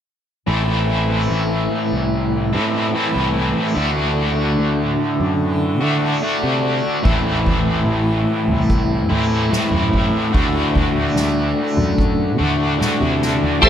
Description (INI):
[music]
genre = psychedelic rock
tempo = 73 BPM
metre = 4/4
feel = straight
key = A dorian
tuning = A4 = 440 Hz
[part]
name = crunchy overdriven guitar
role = riff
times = 0.5-13.7 s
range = A2 to F#4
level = -18 LUFS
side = equal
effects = harmonic tremolo, tape echo
[part]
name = picked electric bass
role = bass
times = 0.5-13.7 s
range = A1 to D3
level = -21 LUFS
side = equal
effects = none
[part]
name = tanpura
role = drone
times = 0.5-13.7 s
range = A2 to A3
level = -28 LUFS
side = equal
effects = none
[part]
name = soft-mallet drum kit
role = drums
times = 7.1-13.7 s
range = crash cymbal, kick drum, snare drum, toms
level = -21 LUFS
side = equal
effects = none
[part]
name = bright tonewheel organ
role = sustained chords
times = 13.6-13.7 s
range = G4 to E5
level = -9 LUFS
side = right 1 dB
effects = slow rotary speaker, chorus vibrato
[sound]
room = light reverb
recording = echo-heavy mix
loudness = -16 LUFS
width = side -9 dB against mid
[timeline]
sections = 0.5-13.6 A section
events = drum fill 13.2-13.6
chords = 0.5 Am; 3.8 D; 7.1 Am; 10.3 D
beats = | 0.47 1.29 2.12 2.94 | 3.76 4.58 5.41 6.23 | 7.05 7.87 8.70 9.52 | 10.34 11.16 11.98 12.80 | 13.62